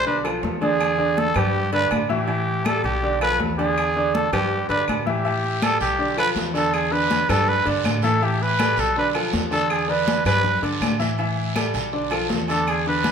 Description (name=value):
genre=latin, salsa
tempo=162 BPM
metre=4/4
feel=straight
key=unclear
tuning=A4 = 440 Hz
part: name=growling trumpet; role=melody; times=0.0-13.1 s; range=G4 to B4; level=-22 LUFS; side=equal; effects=none
part: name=upright bass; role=bass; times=0.0-13.1 s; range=B1 to A2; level=-27 LUFS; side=equal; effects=none
part: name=clear upright piano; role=accompaniment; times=0.1-13.1 s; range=D3 to E5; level=-25 LUFS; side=right 1 dB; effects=none
part: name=congas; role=percussion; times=0.1-13.1 s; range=none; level=-29 LUFS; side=left 3 dB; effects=none
part: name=agogo bells and timbales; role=percussion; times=0.2-13.1 s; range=none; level=-30 LUFS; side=right 4 dB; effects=none
part: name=claves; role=percussion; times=0.3-12.9 s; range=none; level=-35 LUFS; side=left 2 dB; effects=none
part: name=guiro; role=percussion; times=5.2-13.1 s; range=none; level=-33 LUFS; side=right 5 dB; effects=none
room=wet large studio reverb, RT60 1.2 s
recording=band playing live in one room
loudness=-19 LUFS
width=side -7 dB against mid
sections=0.0-13.1 A section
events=trumpet solo 0.0-13.1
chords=0.1 Bm7b5; 0.8 E7; 1.5 G; 2.3 A5; 3.0 Bm7b5; 3.8 E7; 4.5 G; 5.3 A5; 6.0 Bm7b5; 6.7 E5; 7.5 G; 8.2 A5; 9.0 Bm7b5; 9.7 E5; 10.4 G; 11.2 A5; 11.9 Bm7b5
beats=0.07 0.44 | 0.81 1.18 1.55 1.92 | 2.29 2.66 3.03 3.40 | 3.77 4.14 4.51 4.88 | 5.25 5.62 5.99 6.36 | 6.73 7.11 7.48 7.85 | 8.22 8.59 8.96 9.33 | 9.70 10.07 10.45 10.82 | 11.19 11.56 11.93 12.30 | 12.67 13.04